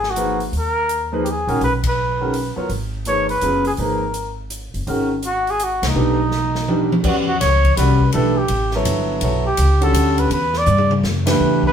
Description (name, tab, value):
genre	modal jazz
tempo	165 BPM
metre	3/4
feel	swing 64% on 8ths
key	G# dorian, E dorian from 7.0 s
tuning	A4 = 440 Hz
part	breathy trumpet	melody	0.0-11.7 s	D#4 to D5	-20 LUFS	equal	none
part	upright bass	bass	0.0-11.7 s	F#1 to G2	-21 LUFS	equal	none
part	swinging big-band drum kit	drums	0.0-11.7 s	crash cymbal, hi-hat, kick drum, ride cymbal, snare drum, toms	-25 LUFS	left 1 dB	none
part	clear baby grand piano	accompaniment	0.2-11.7 s	C#3 to D5	-21 LUFS	equal	none
room	moderate studio reverb, RT60 0.7 s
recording	band playing live in one room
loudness	-16 LUFS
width	side -8 dB against mid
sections	0.0-7.0 A section; 7.0-11.7 B section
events	band accent 1.8, 5.8, 11.2; drum fill 6.3-7.0, 10.7-11.0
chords	0.0 G#m9; 6.0 B7alt; 7.0 Em9